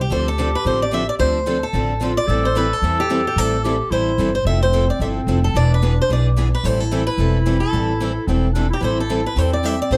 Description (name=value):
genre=acoustic string swing (jazz manouche)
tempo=220 BPM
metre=4/4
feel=swing 58% on 8ths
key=A minor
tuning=A4 = 439 Hz
part: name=picked swing-style acoustic guitar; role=melody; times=0.0-10.0 s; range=G4 to E5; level=-24 LUFS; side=equal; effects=none
part: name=upright bass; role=bass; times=0.0-10.0 s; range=E1 to E2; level=-22 LUFS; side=equal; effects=none
part: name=breathy clarinet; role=second line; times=0.1-10.0 s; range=C4 to A4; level=-27 LUFS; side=equal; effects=none
part: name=picked steel-string acoustic guitar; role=accompaniment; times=0.1-10.0 s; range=D3 to A4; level=-28 LUFS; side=equal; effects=none
part: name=picked steel-string acoustic guitar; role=accompaniment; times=0.1-10.0 s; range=D3 to B4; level=-30 LUFS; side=equal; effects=none
room=light reverb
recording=close, detailed microphones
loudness=-19 LUFS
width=mono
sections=0.0-8.8 A section; 8.8-10.0 A section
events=none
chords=0.1 Dm7; 2.3 Am7; 4.5 Fmaj7; 5.5 E7; 6.6 Am7